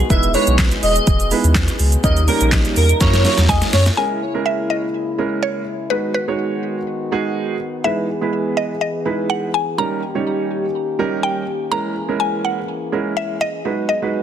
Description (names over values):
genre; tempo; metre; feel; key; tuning
dance-pop; 124 BPM; 4/4; straight; unclear; A4 = 440 Hz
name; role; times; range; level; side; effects
mellow French horn section; sustained chords; 0.0-14.2 s; B2 to D#5; -26 LUFS; left 3 dB; sidechain pumping
warm sub bass; bass; 0.0-3.9 s; E1 to F#2; -16 LUFS; equal; sidechain pumping
airy dreamy lead; melody; 0.1-3.8 s; A#4 to E5; -20 LUFS; equal; chorus, sidechain pumping, tape echo
warm concert grand piano; accompaniment; 0.1-14.2 s; F#3 to C#5; -22 LUFS; right 5 dB; sidechain pumping
deep house drum kit; drums; 0.1-4.0 s; handclaps, hi-hat, kick drum, shaker, snare drum; -18 LUFS; equal; overdrive
mallet-like synth pluck; melody; 3.5-14.2 s; B4 to A#5; -22 LUFS; left 1 dB; chorus, tape echo
room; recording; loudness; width
light reverb; dense, heavily limited modern master; -16 LUFS; side -10 dB against mid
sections
0.0-4.0 A section; 4.0-14.2 B section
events
drop 0.0-4.0; drum fill 3.0-4.0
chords
0.1 Emaj7; 2.0 D#7; 3.0 F#7; 4.0 A#m7b5; 5.9 G#m7; 7.8 Emaj7; 9.8 D#7; 11.7 A#m7b5; 13.7 G#m7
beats
| 0.10 0.59 1.07 1.55 | 2.04 2.52 3.01 3.49 | 3.98 4.46 4.94 5.43 | 5.91 6.39 6.88 7.36 | 7.85 8.33 8.81 9.30 | 9.78 10.27 10.75 11.23 | 11.72 12.20 12.68 13.17 | 13.65 14.14